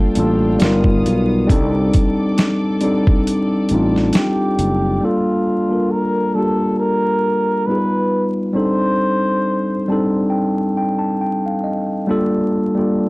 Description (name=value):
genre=lo-fi hip hop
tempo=68 BPM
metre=4/4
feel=swing 55% on 16ths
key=C dorian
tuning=A4 = 440 Hz
part: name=mellow tine electric piano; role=accompaniment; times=0.0-13.1 s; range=G3 to A5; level=-16 LUFS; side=equal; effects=low-pass filter
part: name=warm studio string section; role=sustained chords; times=0.0-5.0 s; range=B3 to D#6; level=-33 LUFS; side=equal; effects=low-pass filter, plate reverb
part: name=sustaining fretless electric bass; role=bass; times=0.2-5.0 s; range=F#1 to C2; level=-19 LUFS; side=equal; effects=tube saturation
part: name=dusty soul sampler-style drum kit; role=drums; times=0.2-4.8 s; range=hi-hat, kick drum, snare drum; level=-16 LUFS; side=equal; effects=overdrive
part: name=breathy flugelhorn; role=melody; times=4.2-10.3 s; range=F4 to C5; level=-20 LUFS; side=equal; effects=low-pass filter
room=moderate studio reverb, RT60 0.6 s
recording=dry, gritty hardware recording, vinyl crackle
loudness=-15 LUFS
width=side -24 dB against mid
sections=0.0-5.0 A section; 5.0-13.1 B section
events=kick muted 3.3-5.0; tine electric piano fill 9.4-12.1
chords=0.0 Gm9; 0.6 G7alt; 1.5 Cm69; 5.0 Gm9; 7.7 Gaug7; 8.5 Cm69; 12.1 Gm9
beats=0.61 | 1.49 2.37 3.25 4.14 | 5.02 5.90 6.78 7.67 | 8.55 9.43 10.31 11.20 | 12.08 12.96